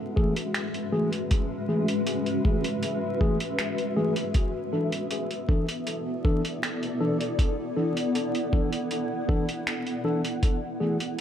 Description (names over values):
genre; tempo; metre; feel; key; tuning
ambient dub; 79 BPM; 4/4; straight; unclear; A4 = 440 Hz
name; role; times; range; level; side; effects
granular cloud pad; sustained chords; 0.0-11.2 s; G#3 to F#5; -29 LUFS; equal; built-in reverb
mellow tine electric piano; stabs; 0.2-11.0 s; E3 to A4; -29 LUFS; left 1 dB; dub echo
electronic kick drum; drums; 0.2-10.6 s; none; -24 LUFS; equal; none
lo-fi sampler-style drum kit; drums; 0.4-11.2 s; finger snaps, hi-hat; -33 LUFS; right 1 dB; dub echo
room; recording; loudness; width
moderate plate reverb, RT60 1.6 s, digital ambience; echo-heavy mix, vinyl crackle; -24 LUFS; side -9 dB against mid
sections
0.0-11.2 A section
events
none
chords
0.0 F#m9; 4.4 E7sus4; 10.4 F#m9